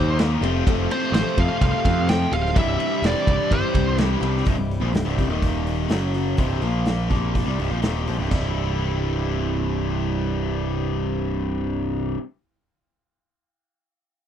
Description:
classic rock; 125 BPM; 4/4; straight; C mixolydian; A4 = 439 Hz
dark smooth lead guitar; melody; 0.0-4.0 s; C5 to G5; -25 LUFS; right 2 dB; overdrive, slapback echo
picked steel-string acoustic guitar; accompaniment; 0.0-12.4 s; Bb2 to C#5; -31 LUFS; left 10 dB
overdriven electric guitar; riff; 0.0-12.2 s; C2 to F4; -28 LUFS; left 13 dB
overdriven electric guitar; riff; 0.0-12.2 s; C2 to F4; -28 LUFS; right 16 dB
growling picked electric bass; bass; 0.0-12.2 s; C1 to F2; -24 LUFS; equal; overdrive
vintage drum kit; drums; 0.2-8.4 s; hi-hat, kick drum, ride cymbal, snare drum, splash cymbal, toms; -24 LUFS; equal
light reverb; -20 LUFS; side -9 dB against mid
0.0-4.5 A section; 4.5-8.3 B section; 8.3-12.2 C section
0.4 Fadd9; 2.6 C; 5.3 Eb5; 5.9 F#5; 6.4 C; 6.6 Bb5; 7.1 C

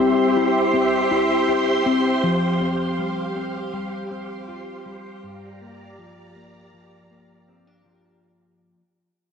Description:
dream pop; 80 BPM; 4/4; straight; G dorian; A4 = 440 Hz
soft string machine; sustained chords; 0.0-8.2 s; G4 to C6; -22 LUFS; right 1 dB; ensemble chorus
mellow electric guitar; arpeggios; 0.0-8.8 s; G2 to G4; -23 LUFS; left 3 dB; lush chorus, tape echo
light reverb; dry, gritty hardware recording; -18 LUFS; side -6 dB against mid
0.0-8.2 A section
fade-out 0.0-8.2
0.0 C/G; 2.2 Fsus2; 5.2 Gm7

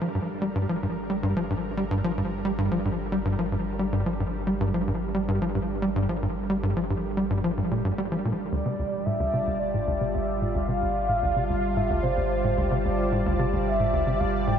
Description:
ambient, sequencer-driven space music; 111 BPM; 4/4; straight; G dorian; A4 = 441 Hz
lush unison pad; sustained chords; 0.0-14.6 s; G3 to A5; -30 LUFS; right 1 dB; chorus
tight sequencer bass; riff; 0.0-14.6 s; D2 to G3; -26 LUFS; equal; lush chorus, analog delay
warm sub bass; bass; 0.0-14.6 s; G1; -34 LUFS; equal
mellow horn-like synth lead; melody; 8.5-14.6 s; C5 to G5; -28 LUFS; equal; chorus, analog delay
wet huge ambient reverb, RT60 7.7 s; dreamy mix soaked in reverb; -24 LUFS; side -8 dB against mid
0.0-14.6 A section
fade-in on analog synth pad 0.0-14.6; fade-in on sub bass 0.0-14.6
0.0 Gm7; 8.5 Dm/G

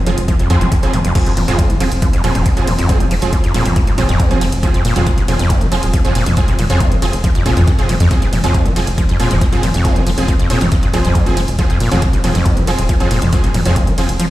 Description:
driving peak-time techno; 138 BPM; 4/4; straight; F minor; A4 = 440 Hz
overdriven acid bass; riff; 0.1-14.3 s; F2 to F3; -18 LUFS; equal; wide subtle chorus, sidechain pumping, digital delay
rave stab; stabs; 0.1-14.1 s; F3 to Ab4; -20 LUFS; right 2 dB; chorus, built-in reverb, sidechain pumping, digital delay
tight sequencer bass; bass; 0.1-14.2 s; Eb1 to F2; -17 LUFS; equal; sidechain pumping
techno drum kit; drums; 0.1-14.3 s; crash cymbal, hi-hat, ride cymbal, toms; -23 LUFS; equal
electronic kick drum; drums; 0.3-13.9 s; -15 LUFS; equal
light reverb; played on a big sound system in a bare room, large studio reverb; -12 LUFS; side -15 dB against mid
0.0-14.3 A section
0.0 Fm

